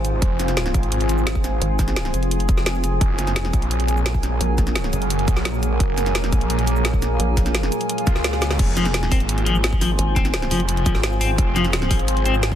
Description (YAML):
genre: dark technical drum and bass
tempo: 172 BPM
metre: 4/4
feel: straight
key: F phrygian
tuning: A4 = 441 Hz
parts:
  - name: deep dark ambient pad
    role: sustained chords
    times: 0.0-12.6 s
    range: Bb3 to Ab4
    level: -27 LUFS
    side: equal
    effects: chorus, built-in reverb, sidechain pumping
  - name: snarling distorted saw bass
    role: bass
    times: 0.0-12.6 s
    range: F1 to Db2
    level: -22 LUFS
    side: equal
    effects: distortion, tube saturation, sidechain pumping
  - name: drum and bass drum kit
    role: drums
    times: 0.0-12.6 s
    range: crash cymbal, hi-hat, shaker, snare drum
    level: -25 LUFS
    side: equal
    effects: none
  - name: warbly tape-like pad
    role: texture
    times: 0.0-12.6 s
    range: Gb3 to Ab5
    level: -28 LUFS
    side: equal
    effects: chorus, built-in reverb, sidechain pumping
  - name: electronic kick drum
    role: drums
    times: 0.2-12.6 s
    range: none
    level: -20 LUFS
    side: equal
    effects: none
  - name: vowel-sweep wobble bass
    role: bass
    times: 1.6-4.9, 7.2-7.7, 10.0-10.5 s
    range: F1 to Bb1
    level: -22 LUFS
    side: equal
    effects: chorus
  - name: swell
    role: sound effects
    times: 8.0-8.6 s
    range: none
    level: -33 LUFS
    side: left 1 dB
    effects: none
  - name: electric guitar at the edge of break-up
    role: arpeggios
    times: 8.8-12.3 s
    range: F3 to C4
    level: -24 LUFS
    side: left 4 dB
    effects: tremolo, sidechain pumping, digital delay
room: digital ambience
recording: dense, heavily limited modern master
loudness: -18 LUFS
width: side -10 dB against mid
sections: 0.0-12.6 A section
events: swell 8.0-8.6; drum fill 8.3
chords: 0.0 Fm; 3.0 Gbadd9; 8.6 Fm